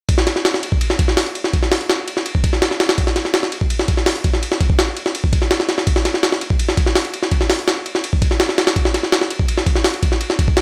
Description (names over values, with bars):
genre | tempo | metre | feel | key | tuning
drum and bass | 166 BPM | 4/4 | straight | none | none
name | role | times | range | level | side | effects
jungle sampler-style drum kit | drums | 0.1-10.6 s | hi-hat, kick drum, ride cymbal, snare drum | -18 LUFS | equal | none
room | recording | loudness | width
little or no reverb | none | -18 LUFS | mono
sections
0.1-10.6 A section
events
none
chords
none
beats
| 0.09 0.45 0.81 1.17 | 1.53 1.90 2.26 2.62 | 2.98 3.34 3.70 4.06 | 4.43 4.79 5.15 5.51 | 5.87 6.23 6.59 6.96 | 7.32 7.68 8.04 8.40 | 8.76 9.12 9.49 9.85 | 10.21 10.57